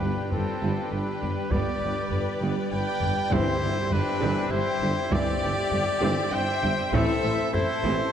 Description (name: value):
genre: cinematic, epic orchestral film score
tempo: 100 BPM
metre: 3/4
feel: straight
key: G major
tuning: A4 = 440 Hz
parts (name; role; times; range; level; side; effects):
- warm symphonic violin section; melody; 0.0-8.1 s; F4 to E5; -35 LUFS; left 5 dB; none
- rich studio violin section; second line; 0.0-8.1 s; A4 to G5; -37 LUFS; left 4 dB; none
- silver concert flute; second line; 0.0-8.1 s; C4 to C5; -33 LUFS; left 3 dB; none
- warm symphonic viola section; accompaniment; 0.0-8.1 s; C3 to B4; -34 LUFS; equal; none
- pipe organ, strings celeste; sustained chords; 0.0-8.1 s; G3 to G5; -34 LUFS; equal; none
- clear trumpet; stabs; 0.0-8.1 s; A4 to G5; -30 LUFS; right 1 dB; none
- mellow tuba; bass; 0.0-8.0 s; G1 to A1; -34 LUFS; right 2 dB; none
- rich studio double bass section; bass; 0.0-7.9 s; G1 to A1; -33 LUFS; right 3 dB; none
- rich symphonic cello section; bass; 0.0-7.9 s; G2 to A2; -34 LUFS; right 2 dB; none
- timpani; percussion; 0.0-0.6, 3.3-4.2 s; G2; -36 LUFS; left 1 dB; none
- taiko ensemble; drums; 0.3-7.8 s; none; -32 LUFS; left 1 dB; none
- dark French horn section; sustained chords; 1.5-7.1 s; B3 to G4; -36 LUFS; left 4 dB; none
room: wet concert hall reverb, RT60 1.9 s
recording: dark, warm production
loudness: -23 LUFS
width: side -8 dB against mid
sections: 0.0-8.1 A section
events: none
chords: 0.0 G; 3.3 Cadd9/G; 6.9 Am